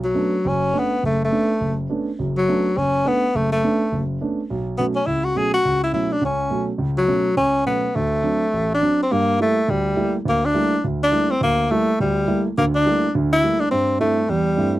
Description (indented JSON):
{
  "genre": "jazz",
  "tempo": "208 BPM",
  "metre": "4/4",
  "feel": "swing 61% on 8ths",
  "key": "B minor, G dorian from 9.1 s",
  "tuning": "A4 = 441 Hz",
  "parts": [
    { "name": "clear tenor saxophone", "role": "melody", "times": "0.0-14.8 s", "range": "F#3 to G#4", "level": "-19 LUFS", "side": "left 1 dB", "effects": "none" },
    { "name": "warm grand piano", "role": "accompaniment", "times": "0.0-14.8 s", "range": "F#1 to E4", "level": "-22 LUFS", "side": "right 2 dB", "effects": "none" }
  ],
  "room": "moderate booth ambience, RT60 0.2 s",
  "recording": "dry, close 1970s-style studio recording",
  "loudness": "-18 LUFS",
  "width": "side -15 dB against mid",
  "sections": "0.0-9.1 A section; 9.1-14.8 B section",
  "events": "none",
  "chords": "0.0 Bm9; 4.5 F#m/B; 7.9 D7; 9.1 Gm69; 13.7 Am"
}